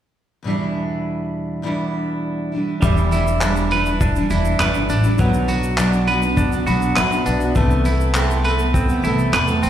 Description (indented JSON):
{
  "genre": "acoustic pop",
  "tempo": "101 BPM",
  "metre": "4/4",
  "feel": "straight",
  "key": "E minor",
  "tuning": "A4 = 440 Hz",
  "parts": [
    { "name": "picked steel-string acoustic guitar", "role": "accompaniment", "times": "0.4-9.7 s", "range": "E2 to A4", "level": "-21 LUFS", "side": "equal", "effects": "double-tracked left and right, slapback echo" },
    { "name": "reed electric piano", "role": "accompaniment", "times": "2.8-9.7 s", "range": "C4 to B5", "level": "-29 LUFS", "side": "left 6 dB", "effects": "fast tremolo, plate reverb, slapback echo" },
    { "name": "semi-hollow electric guitar", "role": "arpeggios", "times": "2.8-9.7 s", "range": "F#3 to B4", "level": "-22 LUFS", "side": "right 3 dB", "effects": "plate reverb, slapback echo" },
    { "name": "upright bass", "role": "bass", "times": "2.8-9.7 s", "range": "E1 to E2", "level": "-20 LUFS", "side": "equal", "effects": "none" },
    { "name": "cloth-damped thuddy drum kit", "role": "drums", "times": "2.8-9.7 s", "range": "handclaps, kick drum, tambourine", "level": "-22 LUFS", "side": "left 1 dB", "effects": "none" },
    { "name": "tube shaker", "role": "percussion", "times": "2.8-9.7 s", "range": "none", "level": "-40 LUFS", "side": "left 6 dB", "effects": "none" }
  ],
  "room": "light reverb",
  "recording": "live gig heard through the venue's PA, recital hall reverb",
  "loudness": "-16 LUFS",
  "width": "side -10 dB against mid",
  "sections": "0.4-2.8 A section; 2.8-9.7 B section",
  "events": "reed electric piano fill 6.4-7.6",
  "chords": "0.4 Em7; 5.2 Bm; 7.6 Amadd9/C",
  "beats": "| 0.44 1.04 1.63 2.23 | 2.82 3.42 4.01 4.60 | 5.19 5.79 6.38 6.97 | 7.56 8.15 8.74 9.34"
}